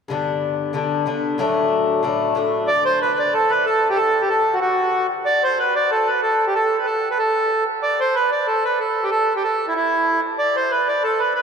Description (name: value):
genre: celtic folk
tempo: 187 BPM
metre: 4/4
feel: swing 53% on 8ths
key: G major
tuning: A4 = 440 Hz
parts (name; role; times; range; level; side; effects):
- Irish bouzouki; accompaniment; 0.1-3.2 s; G2 to D4; -22 LUFS; left 4 dB; none
- accordion; melody; 2.7-11.4 s; E4 to D5; -17 LUFS; right 1 dB; none
room: wet cathedral reverb, RT60 6.6 s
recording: in a vast, echoing space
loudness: -17 LUFS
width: side -6 dB against mid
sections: 0.1-2.7 A section; 2.7-11.4 B section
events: none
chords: 0.1 G; 1.4 D; 2.7 N.C.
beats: | 0.10 0.42 0.75 1.07 | 1.39 1.72 2.04 2.36 | 2.68 3.01 3.33 3.65 | 3.97 4.29 4.61 4.93 | 5.26 5.58 5.90 6.22 | 6.54 6.86 7.18 7.50 | 7.82 8.14 8.46 8.78 | 9.10 9.42 9.74 10.06 | 10.38 10.70 11.02 11.34